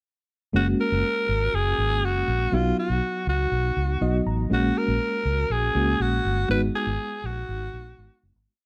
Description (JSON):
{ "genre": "1980s-style pop", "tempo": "121 BPM", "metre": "4/4", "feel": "straight", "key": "F# major", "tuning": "A4 = 440 Hz", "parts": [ { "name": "FM electric piano with tremolo", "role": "accompaniment", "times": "0.5-8.5 s", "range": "F#3 to A#5", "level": "-30 LUFS", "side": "equal", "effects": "none" }, { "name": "vintage muted fingered electric bass", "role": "bass", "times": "0.5-8.4 s", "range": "F#1 to C#2", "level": "-28 LUFS", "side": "equal", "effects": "none" }, { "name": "raspy alto saxophone", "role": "melody", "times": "0.6-8.2 s", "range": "E#4 to B4", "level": "-28 LUFS", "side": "equal", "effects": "none" } ], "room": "light reverb", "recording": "none", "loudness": "-24 LUFS", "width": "mono", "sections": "0.5-8.5 verse", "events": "FM electric piano fill 3.8-4.5; fade-out 6.5-8.5", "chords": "0.5 F#add9; 2.5 B; 4.5 F#add9/A#; 6.5 G#m7" }